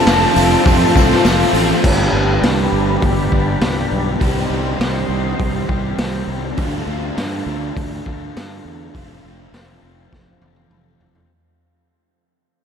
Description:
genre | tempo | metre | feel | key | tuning
rock, shoegaze and dream pop | 102 BPM | 4/4 | straight | G mixolydian | A4 = 440 Hz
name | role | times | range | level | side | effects
mellow silver concert flute | melody | 0.0-1.2 s | A5 | -23 LUFS | left 1 dB | analog delay
sweeping resonant pad | sustained chords | 0.0-6.6 s | F4 to C6 | -24 LUFS | left 1 dB | chorus
crunchy overdriven guitar | riff | 0.0-11.3 s | F2 to G4 | -22 LUFS | left 6 dB | analog chorus
overdriven electric guitar | riff | 0.0-1.8 s | F2 to C4 | -23 LUFS | equal | none
overdriven semi-hollow guitar | riff | 0.0-11.3 s | F2 to G4 | -22 LUFS | right 7 dB | reverse reverb
fuzz fingered electric bass | bass | 0.1-11.2 s | F1 to G2 | -21 LUFS | equal | overdrive
raw garage drum kit | drums | 0.1-11.3 s | crash cymbal, hi-hat, kick drum, snare drum, toms | -19 LUFS | equal | none
tambourine | percussion | 0.1-1.6 s | none | -35 LUFS | right 14 dB | none
room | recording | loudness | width
wet huge ambient reverb, RT60 9.3 s | dreamy mix soaked in reverb | -14 LUFS | side -7 dB against mid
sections
0.0-1.8 A section; 1.8-11.3 B section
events
fade-out 1.8-11.3; drum fill 10.1-11.3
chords
0.0 F; 1.8 G; 4.2 Cm; 6.6 Dm; 8.9 F

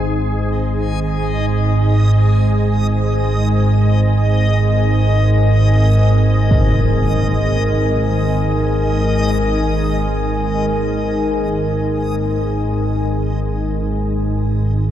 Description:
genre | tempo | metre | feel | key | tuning
dark ambient drone | free time | none | none | unclear | A4 = 440 Hz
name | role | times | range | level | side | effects
dark analog pad | sustained chords | 0.2-14.9 s | G#3 to G#5 | -25 LUFS | left 1 dB | lush chorus
organ-like drone | drone | 0.0-14.9 s | G#1 to G#2 | -15 LUFS | right 1 dB | ensemble chorus, built-in reverb
backwards swelling texture | texture | 0.0-14.9 s | G#4 to D#5 | -26 LUFS | left 2 dB | built-in reverb
impact | percussion | 6.5-6.7 s | none | -21 LUFS | equal | low-pass filter on sfx
room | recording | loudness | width
wet huge ambient reverb, RT60 7.8 s | dark, warm production | -14 LUFS | side -11 dB against mid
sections
0.1-14.9 A section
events
fade-in on analog synth pad 0.1-14.9; fade-out on synth texture 0.1-14.9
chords
0.1 G#5

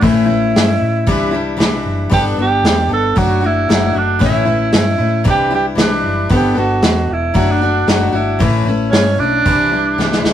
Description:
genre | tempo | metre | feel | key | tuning
folk rock and heartland rock | 114 BPM | 4/4 | straight | G major | A4 = 445 Hz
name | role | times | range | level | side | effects
breathy tenor saxophone | melody | 0.0-10.2 s | C#4 to A4 | -17 LUFS | right 3 dB | none
picked steel-string acoustic guitar | accompaniment | 0.0-10.3 s | A2 to A4 | -17 LUFS | left 4 dB | none
hollow-body short-scale fingered electric bass | bass | 0.0-10.3 s | E1 to A2 | -20 LUFS | right 1 dB | none
vintage drum kit | drums | 0.0-10.3 s | hi-hat, kick drum, snare drum | -16 LUFS | equal | none
room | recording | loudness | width
moderate studio ambience, RT60 0.5 s | rough rehearsal-room recording | -12 LUFS | side -10 dB against mid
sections
0.0-10.3 A section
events
drum fill 10.0-10.3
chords
0.0 A; 1.1 Cadd9; 2.1 Gadd9; 3.2 D/F#; 4.2 A; 5.3 Cadd9; 6.3 Gadd9; 7.4 D/F#; 8.4 A; 9.5 Cadd9

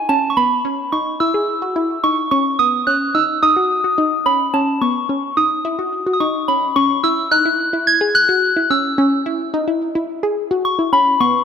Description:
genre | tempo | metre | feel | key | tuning
pop | 108 BPM | 4/4 | straight | C# minor | A4 = 440 Hz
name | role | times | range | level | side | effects
soft synth bell | melody | 0.0-11.4 s | A5 to G#6 | -16 LUFS | equal | chorus, phaser, digital delay
wide unison pluck | arpeggios | 0.0-11.4 s | B3 to G#4 | -20 LUFS | left 1 dB | digital delay
room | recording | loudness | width
moderate plate reverb, RT60 2.9 s | dark, warm production | -15 LUFS | side -7 dB against mid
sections
0.0-6.8 A section; 6.8-11.4 B section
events
none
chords
0.1 Bsus4; 2.3 B; 4.5 B9; 5.6 C#m11; 6.8 C#madd11

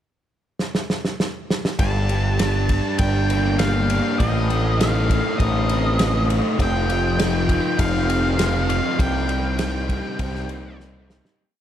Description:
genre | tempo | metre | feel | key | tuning
rock, shoegaze and dream pop | 100 BPM | 4/4 | straight | G minor | A4 = 441 Hz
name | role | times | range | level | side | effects
loose indie drum kit | drums | 0.6-11.4 s | kick drum, ride cymbal, snare drum | -24 LUFS | equal | none
octave-fuzz lead guitar | melody | 1.8-10.8 s | Eb5 to A5 | -26 LUFS | left 1 dB | distortion, tape echo
fuzz guitar | riff | 1.8-11.4 s | G2 to Eb4 | -23 LUFS | equal | distortion, wide subtle chorus
growling picked electric bass | bass | 1.8-11.2 s | F1 to C2 | -22 LUFS | equal | overdrive
room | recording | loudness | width
wet huge ambient reverb, RT60 9.1 s | dreamy mix soaked in reverb | -18 LUFS | side -10 dB against mid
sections
0.0-1.8 pickup bar; 1.8-11.4 verse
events
drum fill 0.6-1.8, 10.8-11.4; fade-out 9.0-11.4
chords
0.0 N.C.; 1.8 Gm; 4.2 Adim; 6.6 F5; 9.0 Cm7

